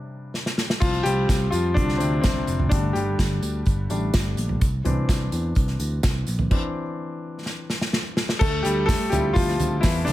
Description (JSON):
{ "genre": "piano-driven pop", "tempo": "126 BPM", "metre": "4/4", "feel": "straight", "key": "unclear", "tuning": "A4 = 441 Hz", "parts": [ { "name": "clear baby grand piano", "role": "accompaniment", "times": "0.0-10.1 s", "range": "C3 to D6", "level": "-26 LUFS", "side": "left 2 dB", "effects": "none" }, { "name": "unplugged drum kit", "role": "drums", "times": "0.3-10.1 s", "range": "crash cymbal, hi-hat, kick drum, snare drum, toms", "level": "-23 LUFS", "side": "equal", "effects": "none" }, { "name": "picked electric bass", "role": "bass", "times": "0.8-10.1 s", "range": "F1 to F2", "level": "-25 LUFS", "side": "equal", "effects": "none" }, { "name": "tambourine", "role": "percussion", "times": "0.8-10.1 s", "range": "none", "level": "-40 LUFS", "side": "right 9 dB", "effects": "none" } ], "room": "light reverb, studio reverb", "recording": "none", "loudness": "-20 LUFS", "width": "side -14 dB against mid", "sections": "0.8-8.4 A section; 8.4-10.1 B section", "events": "drum fill 0.3-0.8, 7.5-8.4; grand piano solo 0.8-8.4, 8.4-10.1; stop 6.5-8.4", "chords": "0.0 Csus2; 0.8 Csus4; 2.7 Gsus2; 4.6 Cadd9; 8.4 Dm7", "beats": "0.34 | 0.81 1.29 1.76 2.24 | 2.71 3.19 3.66 4.14 | 4.61 5.09 5.56 6.04 | 6.51 6.99 7.46 7.94 | 8.41 8.88 9.36 9.83" }